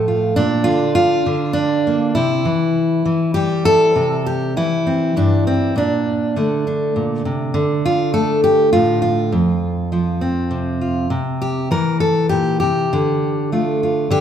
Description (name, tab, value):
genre	folk, solo fingerstyle acoustic guitar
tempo	101 BPM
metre	3/4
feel	straight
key	C mixolydian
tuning	A4 = 440 Hz
part	fingerpicked steel-string acoustic guitar	solo	0.0-14.2 s	F2 to Bb4	-15 LUFS	equal	none
room	wet large studio reverb, RT60 1.4 s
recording	band playing live in one room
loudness	-15 LUFS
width	side -9 dB against mid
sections	0.0-4.0 A section; 4.0-14.2 B section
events	none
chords	0.4 Bb; 2.2 C; 5.8 Bbmaj9; 7.5 D5; 9.3 F5; 11.1 C; 12.9 Dm